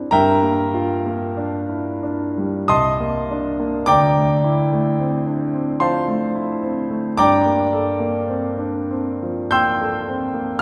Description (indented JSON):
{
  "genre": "classical, impressionist solo piano",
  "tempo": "43-58 BPM",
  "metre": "3/4",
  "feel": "rubato",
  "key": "G dorian",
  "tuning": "A4 = 440 Hz",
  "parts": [
    { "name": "warm concert grand piano", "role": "solo", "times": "0.0-10.6 s", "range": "C2 to G6", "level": "-20 LUFS", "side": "equal", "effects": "none" }
  ],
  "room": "wet church reverb, RT60 2.9 s",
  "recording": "recorded in a church or concert hall",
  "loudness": "-20 LUFS",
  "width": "mono",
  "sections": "0.1-10.6 A section",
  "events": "none",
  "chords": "0.1 Gm7; 2.7 Cm9; 3.9 Dm9; 7.2 Gm11"
}